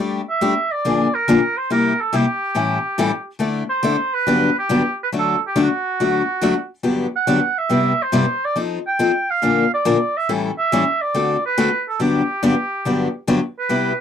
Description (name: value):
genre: jazz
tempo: 140 BPM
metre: 4/4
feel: swing 65% on 8ths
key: G major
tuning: A4 = 440 Hz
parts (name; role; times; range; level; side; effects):
- picked steel-string acoustic guitar; accompaniment; 0.0-13.9 s; G2 to Bb4; -18 LUFS; left 3 dB; none
- clear oboe; melody; 0.3-14.0 s; F#4 to G5; -20 LUFS; right 3 dB; none
room: moderate booth ambience, RT60 0.2 s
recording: dry, close 1970s-style studio recording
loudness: -17 LUFS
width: side -8 dB against mid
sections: 0.0-13.7 A section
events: none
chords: 0.0 Gsus2; 0.8 Bb7; 1.7 C7; 2.6 A7; 3.4 Dsus2; 4.3 Gmaj7; 5.1 D; 6.8 Gmaj7; 7.7 Cmaj7/G; 8.6 F7; 9.4 Bb; 10.3 A7; 11.1 D7; 12.0 Gmaj7